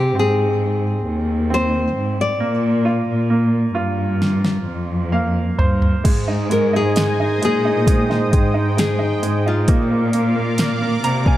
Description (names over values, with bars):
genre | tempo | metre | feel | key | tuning
pop ballad | 66 BPM | 4/4 | straight | unclear | A4 = 438 Hz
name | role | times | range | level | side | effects
nylon-string guitar | melody | 0.0-11.2 s | F4 to D5 | -22 LUFS | left 3 dB | digital delay
bright grand piano | accompaniment | 0.0-11.4 s | Ab3 to Bb5 | -23 LUFS | right 3 dB | none
warm chamber cello section | bass | 0.0-11.4 s | Eb2 to C3 | -20 LUFS | equal | none
smooth R&B drum kit | drums | 4.2-11.4 s | crash cymbal, hi-hat, kick drum, snare drum, toms | -19 LUFS | equal | none
sweeping resonant pad | sustained chords | 6.0-11.4 s | Bb4 to Eb6 | -26 LUFS | left 1 dB | chorus
room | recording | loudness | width
light reverb, digital ambience | dark, warm production | -16 LUFS | side -14 dB against mid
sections
0.0-6.1 A section; 6.1-11.4 B section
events
drum fill 4.2-6.1; grand piano fill 4.7-6.1, 10.6-11.4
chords
0.0 Ab; 2.4 Bb; 6.1 Ab; 9.7 Bb